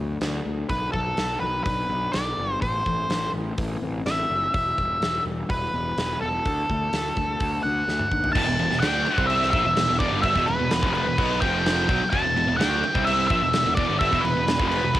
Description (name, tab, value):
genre	quiet-loud alternative rock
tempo	126 BPM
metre	4/4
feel	straight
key	E minor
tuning	A4 = 441 Hz
part	picked steel-string acoustic guitar	arpeggios	0.0-8.4 s	A2 to F#4	-33 LUFS	left 5 dB	cassette tape
part	fuzz picked electric bass	bass	0.0-15.0 s	E1 to D#2	-29 LUFS	equal	overdrive
part	huge arena drum kit	drums	0.2-15.0 s	crash cymbal, hi-hat, kick drum, snare drum, toms	-28 LUFS	equal	cassette tape
part	octave-fuzz lead guitar	melody	0.7-15.0 s	A4 to A5	-24 LUFS	equal	distortion, cassette tape
part	biting overdriven guitar	riff	8.4-15.0 s	E2 to D4	-29 LUFS	right 9 dB	cassette tape
part	high-gain distorted guitar	riff	8.4-15.0 s	E2 to D4	-28 LUFS	left 6 dB	distortion, cassette tape
room	studio reverb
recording	home recording on cassette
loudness	-21 LUFS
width	side -14 dB against mid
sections	0.0-8.4 A section; 8.4-15.0 B section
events	drum fill 7.9-8.4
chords	0.0 D; 0.7 Bm; 2.6 Am; 4.5 Em; 6.5 D; 8.4 Em; 11.4 F5; 11.9 Em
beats	0.22 | 0.70 1.18 1.66 2.14 | 2.62 3.10 3.58 4.06 | 4.54 5.02 5.50 5.97 | 6.45 6.93 7.40 7.88 | 8.35 8.83 9.30 9.77 | 10.24 10.71 11.18 11.65 | 12.12 12.60 13.07 13.54 | 14.01 14.48 14.95